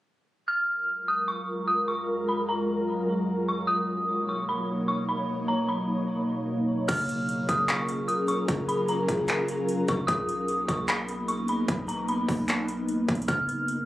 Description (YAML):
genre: hip hop, atmospheric cloud-rap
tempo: 150 BPM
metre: 4/4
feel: half-time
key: F# major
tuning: A4 = 440 Hz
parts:
  - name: dark detuned synth bell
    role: melody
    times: 0.5-13.8 s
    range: A#5 to E#6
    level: -29 LUFS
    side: equal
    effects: chorus, low-pass filter, digital delay
  - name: ethereal airy pad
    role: sustained chords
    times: 1.2-13.9 s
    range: F#2 to C#5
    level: -28 LUFS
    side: equal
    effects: ensemble chorus, built-in reverb, sidechain pumping
  - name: long sustained 808-style bass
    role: bass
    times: 6.9-13.9 s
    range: F#1 to B1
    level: -36 LUFS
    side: equal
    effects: none
  - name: trap drum kit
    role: drums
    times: 6.9-13.8 s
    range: crash cymbal, handclaps, hi-hat, kick drum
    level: -29 LUFS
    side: equal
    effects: overdrive
room: moderate digital room reverb, RT60 1.1 s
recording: recorded on a phone in the room, club reverb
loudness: -25 LUFS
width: side -15 dB against mid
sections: 0.5-6.9 A section; 6.9-13.9 B section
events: none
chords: 0.5 F#maj7; 3.7 Bmaj7; 6.9 F#maj7; 10.1 Bmaj7; 13.3 F#maj7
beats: | 0.48 0.89 1.28 1.69 | 2.08 2.48 2.88 3.29 | 3.69 4.08 4.49 4.88 | 5.29 5.68 6.08 6.49 | 6.88 7.29 7.68 8.09 | 8.48 8.88 9.29 9.69 | 10.09 10.48 10.88 11.29 | 11.69 12.09 12.48 12.88 | 13.29 13.69